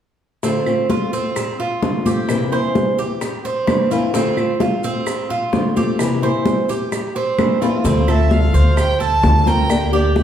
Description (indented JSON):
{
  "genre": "latin, Cuban son and guajira",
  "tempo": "130 BPM",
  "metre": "4/4",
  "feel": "straight",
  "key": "D minor",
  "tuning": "A4 = 440 Hz",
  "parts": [
    { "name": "nylon-string guitar", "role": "accompaniment", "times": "0.4-10.2 s", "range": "C3 to G4", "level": "-21 LUFS", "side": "left 2 dB", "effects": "none" },
    { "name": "Cuban tres", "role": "arpeggios", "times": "0.4-10.2 s", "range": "C4 to C5", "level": "-21 LUFS", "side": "right 4 dB", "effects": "none" },
    { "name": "bongos", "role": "percussion", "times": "0.4-10.2 s", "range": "none", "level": "-26 LUFS", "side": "left 3 dB", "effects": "none" },
    { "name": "congas", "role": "percussion", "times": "0.4-10.2 s", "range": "none", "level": "-23 LUFS", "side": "equal", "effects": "none" },
    { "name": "maracas", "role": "percussion", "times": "0.4-10.2 s", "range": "none", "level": "-38 LUFS", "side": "right 5 dB", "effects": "none" },
    { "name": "claves", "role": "percussion", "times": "0.7-9.9 s", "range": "none", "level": "-35 LUFS", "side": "right 3 dB", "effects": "none" },
    { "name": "upright bass", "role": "bass", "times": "7.8-10.2 s", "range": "D2", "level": "-15 LUFS", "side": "equal", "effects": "none" },
    { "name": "clear violin", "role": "melody", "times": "8.1-10.2 s", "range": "D5 to A5", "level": "-20 LUFS", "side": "right 1 dB", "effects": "none" }
  ],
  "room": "wet large studio reverb, RT60 1.4 s",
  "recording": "heard from further back in the room",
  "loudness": "-15 LUFS",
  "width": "side -9 dB against mid",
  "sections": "0.4-7.8 A section; 7.8-10.2 B section",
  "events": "drum fill 7.6",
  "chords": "0.4 Dm7; 2.3 C7; 4.1 Dm7; 6.0 C7; 7.8 Dm7; 9.7 Gm/D",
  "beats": "| 0.43 0.90 1.36 1.82 | 2.29 2.75 3.22 3.68 | 4.14 4.61 5.07 5.53 | 6.00 6.46 6.92 7.38 | 7.85 8.31 8.77 9.24 | 9.70 10.16"
}